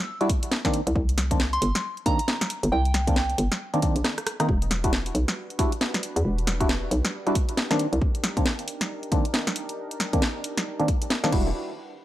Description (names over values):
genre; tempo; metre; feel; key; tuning
UK garage, two-step garage; 136 BPM; 4/4; swing 60% on 16ths; unclear; A4 = 440 Hz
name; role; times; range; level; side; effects
percussive organ stab; stabs; 0.2-11.5 s; D#3 to F#4; -27 LUFS; equal; lush chorus, tape echo
garage drum kit; drums; 0.2-11.4 s; crash cymbal, hi-hat, rim click, snare drum; -27 LUFS; equal; small room ambience
electronic kick drum; drums; 0.3-11.4 s; none; -25 LUFS; equal; small room ambience
hollow knocking FM bass; bass; 0.9-8.0, 11.3-11.5 s; E1 to E2; -24 LUFS; equal; none
soft synth bell; melody; 1.5-3.3 s; G5 to C6; -29 LUFS; right 2 dB; chorus, tape echo
warm analog pad; sustained chords; 4.5-11.5 s; D4 to B4; -37 LUFS; right 1 dB; chorus, sidechain pumping
room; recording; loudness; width
digital ambience; dry, gritty hardware recording; -22 LUFS; side -14 dB against mid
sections
0.0-4.5 A section; 4.5-11.5 B section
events
kick drops out 4.0-4.5; drum fill 4.0-4.5; filter sweep on synth stab 4.5-11.5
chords
0.0 Em9; 0.7 Cm9; 4.5 Em9; 7.8 Cm9; 11.3 Em9; 11.5 N.C.